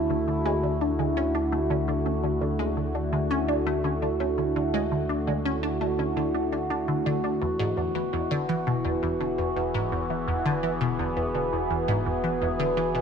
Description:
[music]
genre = ambient, sequencer-driven space music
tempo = 84 BPM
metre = 4/4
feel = straight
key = unclear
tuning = A4 = 440 Hz
[part]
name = sweeping resonant pad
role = sustained chords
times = 0.0-13.0 s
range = D3 to G#4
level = -26 LUFS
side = equal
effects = chorus, phaser
[part]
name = resonant blip pluck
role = riff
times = 0.0-13.0 s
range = E2 to D4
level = -28 LUFS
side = equal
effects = phaser, analog chorus, tape echo
[part]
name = warm sub bass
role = bass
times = 0.0-13.0 s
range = E1 to D2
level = -35 LUFS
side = equal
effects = none
[sound]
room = moderate plate reverb, RT60 3.2 s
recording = cassette tape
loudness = -24 LUFS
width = side -7 dB against mid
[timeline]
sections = 0.0-13.0 A section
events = none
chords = 0.0 D; 7.4 E

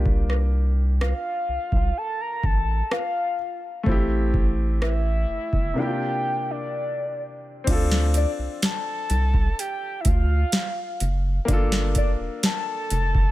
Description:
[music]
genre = contemporary R&B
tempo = 63 BPM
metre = 4/4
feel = straight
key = D minor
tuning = A4 = 440 Hz
[part]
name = warm baby grand piano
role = accompaniment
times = 0.0-13.3 s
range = C3 to A4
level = -29 LUFS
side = left 2 dB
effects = none
[part]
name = rubbery square bass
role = bass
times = 0.0-13.3 s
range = F1 to D2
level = -22 LUFS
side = equal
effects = none
[part]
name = booming analog drum machine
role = drums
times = 0.1-13.3 s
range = crash cymbal, hi-hat, kick drum, rim click, snare drum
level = -23 LUFS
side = equal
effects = overdrive
[part]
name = soft octave-layered synth lead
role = melody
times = 1.0-13.3 s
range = D5 to Bb5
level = -28 LUFS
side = left 1 dB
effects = chorus, phaser, tape echo
[sound]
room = little or no reverb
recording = none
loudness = -21 LUFS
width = side -16 dB against mid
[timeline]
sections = 0.0-7.7 A section; 7.7-13.3 B section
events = break 5.8-7.7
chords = 0.0 C7sus4; 3.9 Am7; 5.8 C9sus4; 7.7 Dm7; 11.5 Gm7

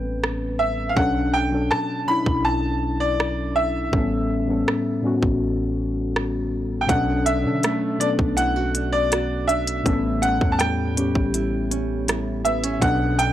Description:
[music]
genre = contemporary R&B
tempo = 81 BPM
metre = 4/4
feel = straight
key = B minor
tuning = A4 = 440 Hz
[part]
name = bright grand piano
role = melody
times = 0.0-13.3 s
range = D5 to B5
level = -24 LUFS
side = equal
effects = none
[part]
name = muted felt-like synth keys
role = accompaniment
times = 0.0-13.3 s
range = A2 to B4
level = -24 LUFS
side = left 2 dB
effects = chorus
[part]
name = warm 808-style bass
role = bass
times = 0.0-13.3 s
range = A1 to D3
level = -28 LUFS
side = right 1 dB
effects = none
[part]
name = trap drum kit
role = drums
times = 0.2-13.3 s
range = hi-hat, kick drum, rim click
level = -24 LUFS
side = right 1 dB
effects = none
[part]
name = nylon-string guitar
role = arpeggios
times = 6.9-13.3 s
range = A2 to F#4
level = -29 LUFS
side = right 6 dB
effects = analog delay
[sound]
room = little or no reverb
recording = dry, gritty hardware recording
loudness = -20 LUFS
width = side -12 dB against mid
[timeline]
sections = 0.0-13.3 A section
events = break 0.0-6.9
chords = 0.0 A7; 1.0 Bm7; 3.9 A7; 6.9 Bm7; 9.9 A7; 12.8 Bm7

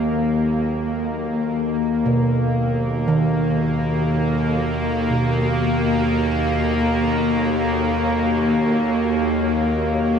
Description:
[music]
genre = dark ambient drone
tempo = free time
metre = none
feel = none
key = unclear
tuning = A4 = 440 Hz
[part]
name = granular cloud pad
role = sustained chords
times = 0.5-10.2 s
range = Gb4 to Eb5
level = -32 LUFS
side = equal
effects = built-in reverb
[part]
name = bowed-like drone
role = drone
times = 0.0-10.2 s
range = Eb2 to Bb3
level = -19 LUFS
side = left 1 dB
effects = built-in reverb
[part]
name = quartz singing bowl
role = texture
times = 0.0-10.2 s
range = none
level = barely audible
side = none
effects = none
[part]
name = gamelan-type bossed gongs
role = arpeggios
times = 2.1-10.2 s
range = Cb3 to Eb3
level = -24 LUFS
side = right 2 dB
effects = ping-pong delay
[sound]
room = wet huge ambient reverb, RT60 8.1 s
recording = none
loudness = -18 LUFS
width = side -7 dB against mid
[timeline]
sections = 0.0-10.2 A section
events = fade-in on ambient pad 0.0-10.2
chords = 0.0 Gbm

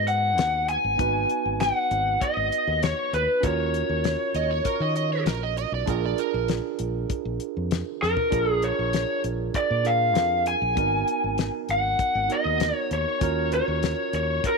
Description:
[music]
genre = straight-eighth soul blues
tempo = 98 BPM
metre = 4/4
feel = straight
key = Eb minor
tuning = A4 = 440 Hz
[part]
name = lead guitar through a small cranked amp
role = melody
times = 0.0-14.6 s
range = Bb4 to Ab5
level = -24 LUFS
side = left 2 dB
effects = overdrive, slapback echo
[part]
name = barky tine electric piano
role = accompaniment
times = 0.0-14.6 s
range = Cb4 to Cb5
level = -30 LUFS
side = right 17 dB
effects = none
[part]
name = fingered electric bass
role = bass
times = 0.0-14.4 s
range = Ab1 to Eb3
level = -29 LUFS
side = left 1 dB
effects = none
[part]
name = damped 70s drum kit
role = drums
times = 0.1-14.6 s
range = hi-hat, kick drum, snare drum, toms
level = -28 LUFS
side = left 6 dB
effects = none
[part]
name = overdriven slide guitar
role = second line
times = 4.4-6.5 s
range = Bb4 to Eb5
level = -29 LUFS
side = right 13 dB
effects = none
[sound]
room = light reverb, studio ambience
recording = 1960s-style stereo with parts hard left and right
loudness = -22 LUFS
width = side -3 dB against mid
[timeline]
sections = 0.0-14.6 A section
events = drum fill 8.0-8.3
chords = 0.0 Abm7; 3.4 Ebm7; 5.9 Bb7; 10.8 Abm7; 13.2 Ebm7

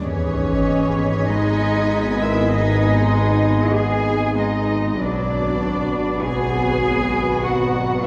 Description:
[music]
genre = cinematic, suspense film score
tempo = 98 BPM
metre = 4/4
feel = straight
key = G# minor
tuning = A4 = 440 Hz
[part]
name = muted studio violin section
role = melody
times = 0.0-8.1 s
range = B4 to D#5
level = -32 LUFS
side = equal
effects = none
[part]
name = clear clarinet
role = second line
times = 0.0-8.1 s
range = E3 to B3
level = -28 LUFS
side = equal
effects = none
[part]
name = bowed-like drone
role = drone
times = 0.0-8.1 s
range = G#1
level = -32 LUFS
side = equal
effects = none
[part]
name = reverse cymbal and sub drop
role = sound effects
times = 0.1-2.5 s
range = none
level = -31 LUFS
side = equal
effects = none
[part]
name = muted chamber violin section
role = second line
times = 0.1-8.1 s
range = C#5 to G#5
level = -31 LUFS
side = equal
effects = none
[part]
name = muted symphonic viola section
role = accompaniment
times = 0.1-8.1 s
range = B3 to G#4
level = -30 LUFS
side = equal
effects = none
[part]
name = clear trombone section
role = sustained chords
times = 0.1-8.1 s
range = B2 to G#3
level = -32 LUFS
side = equal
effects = none
[part]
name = dark French horn section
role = sustained chords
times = 0.1-8.1 s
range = B3 to F#4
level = -30 LUFS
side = equal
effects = none
[part]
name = muted chamber cello section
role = bass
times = 0.1-8.1 s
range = C#4 to G#4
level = -26 LUFS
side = equal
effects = none
[part]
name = muted chamber double bass section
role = bass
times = 0.1-8.1 s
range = G#1 to B1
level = -26 LUFS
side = equal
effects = none
[part]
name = muted chamber violin section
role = texture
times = 0.1-4.6 s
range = G#6 to B6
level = -37 LUFS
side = equal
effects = none
[part]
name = concert harp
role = texture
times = 0.7-8.1 s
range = A#4 to G#6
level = -35 LUFS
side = equal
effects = none
[sound]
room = wet scoring stage reverb, RT60 1.7 s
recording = heard from further back in the room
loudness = -19 LUFS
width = mono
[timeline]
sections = 0.1-8.1 A section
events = impact 0.1-2.5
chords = 0.1 G#m; 5.0 Bm

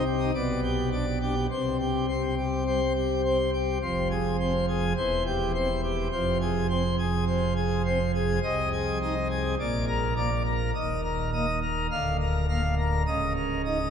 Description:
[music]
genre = classical, organ toccata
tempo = 104 BPM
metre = 4/4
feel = straight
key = unclear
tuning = A4 = 440 Hz
[part]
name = pipe organ, plenum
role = solo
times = 0.0-13.9 s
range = Db1 to F5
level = -24 LUFS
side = equal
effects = none
[sound]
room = wet cathedral reverb, RT60 4.4 s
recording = none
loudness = -24 LUFS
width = side -7 dB against mid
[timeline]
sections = 0.0-13.9 A section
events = none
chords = 0.3 G/B; 1.5 C5; 3.8 Fm; 5.0 C/E; 6.1 Fm; 8.4 Ab/C; 9.6 Bb; 10.7 Eb5; 11.9 Bb/D; 13.1 Eb5/Db

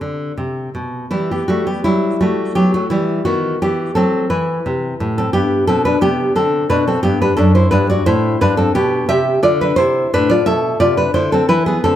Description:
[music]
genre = classical, baroque-style dance for nylon-string guitar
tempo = 58 BPM (dotted quarters)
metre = 6/8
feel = rubato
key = E minor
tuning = A4 = 440 Hz
[part]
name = nylon-string guitar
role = solo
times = 0.0-12.0 s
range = F#2 to E5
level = -14 LUFS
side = equal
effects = none
[sound]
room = moderate recital hall reverb, RT60 1.6 s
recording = none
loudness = -13 LUFS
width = side -11 dB against mid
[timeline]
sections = 0.0-1.1 A section; 1.1-12.0 A section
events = none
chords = 0.0 N.C.; 1.1 Em; 3.3 B/D#; 4.3 E5; 5.3 G; 7.4 D/F#; 8.4 G; 9.4 Bm7b5

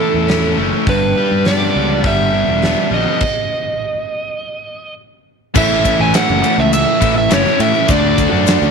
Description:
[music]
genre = classic rock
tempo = 103 BPM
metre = 4/4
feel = straight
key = unclear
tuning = A4 = 440 Hz
[part]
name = overdriven slide guitar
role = melody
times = 0.0-8.7 s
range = A4 to G#5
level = -18 LUFS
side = right 3 dB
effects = none
[part]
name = biting overdriven guitar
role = riff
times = 0.0-8.7 s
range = G2 to F#4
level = -18 LUFS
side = left 14 dB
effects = none
[part]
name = distorted electric guitar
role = riff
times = 0.0-8.7 s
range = G2 to E4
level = -20 LUFS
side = right 14 dB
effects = distortion
[part]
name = fuzz fingered electric bass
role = bass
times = 0.1-8.7 s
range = E1 to A2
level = -20 LUFS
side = left 1 dB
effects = overdrive
[part]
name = huge arena drum kit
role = drums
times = 0.3-8.6 s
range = crash cymbal, hi-hat, kick drum, ride cymbal, snare drum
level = -19 LUFS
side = equal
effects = none
[part]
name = crunchy overdriven guitar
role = riff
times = 5.5-8.7 s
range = A2 to D4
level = -20 LUFS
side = left 1 dB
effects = none
[part]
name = tube shaker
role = percussion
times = 5.6-8.7 s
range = none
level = -32 LUFS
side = left 20 dB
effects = none
[sound]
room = little or no reverb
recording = 1960s-style stereo with parts hard left and right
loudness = -12 LUFS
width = side -5 dB against mid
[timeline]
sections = 0.0-5.6 A section; 5.6-8.7 B section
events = stop 3.2-5.6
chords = 0.0 A; 0.9 G; 3.2 N.C.; 5.6 A; 7.9 D

